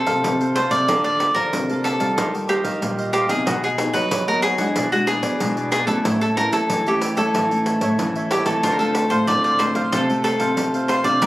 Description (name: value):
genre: samba and choro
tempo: 93 BPM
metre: 4/4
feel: straight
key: unclear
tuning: A4 = 440 Hz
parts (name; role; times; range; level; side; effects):
- cavaquinho; melody; 0.0-11.3 s; F#4 to D5; -21 LUFS; equal; none
- cavaquinho; accompaniment; 0.0-11.3 s; D4 to A5; -28 LUFS; right 2 dB; none
- nylon-string guitar; accompaniment; 0.0-11.3 s; A2 to A4; -26 LUFS; left 2 dB; none
- nylon-string guitar; bass; 0.1-11.3 s; A2 to G3; -25 LUFS; equal; none
- pandeiro; percussion; 0.1-11.3 s; none; -26 LUFS; right 1 dB; none
- bowl-back mandolin; second line; 8.6-11.3 s; F4 to Bb4; -29 LUFS; left 1 dB; none
room: light reverb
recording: recorded on a phone in the room, club reverb, compression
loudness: -17 LUFS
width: side -16 dB against mid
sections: 0.0-11.3 A section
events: none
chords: 0.0 F/C; 0.9 Bbmaj7/D; 2.2 Ebadd9; 3.5 B; 4.8 E7/B; 6.1 A; 8.6 Dm7; 9.9 F/C